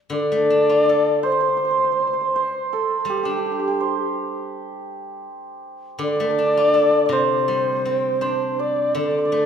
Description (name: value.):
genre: chinese traditional, Chinese chamber ensemble.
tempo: 81 BPM.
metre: 4/4.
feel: straight.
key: D yu mode.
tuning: A4 = 442 Hz.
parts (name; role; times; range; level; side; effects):
reedy xiao; melody; 0.1-9.5 s; G4 to D5; -20 LUFS; left 1 dB; none.
hammered dulcimer; second line; 0.1-9.5 s; G4 to D5; -25 LUFS; right 6 dB; none.
steel-string zither; accompaniment; 0.1-9.5 s; C3 to A4; -23 LUFS; left 2 dB; none.
room: wet recital hall reverb, RT60 1.4 s.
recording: minimal, uncompressed stereo recording.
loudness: -18 LUFS.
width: side -7 dB against mid.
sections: 0.1-9.5 A section.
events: none.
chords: none.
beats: | 0.12 0.86 1.61 2.34 | 3.08 3.80 4.53 5.26 | 6.00 6.73 7.47 8.21 | 8.96.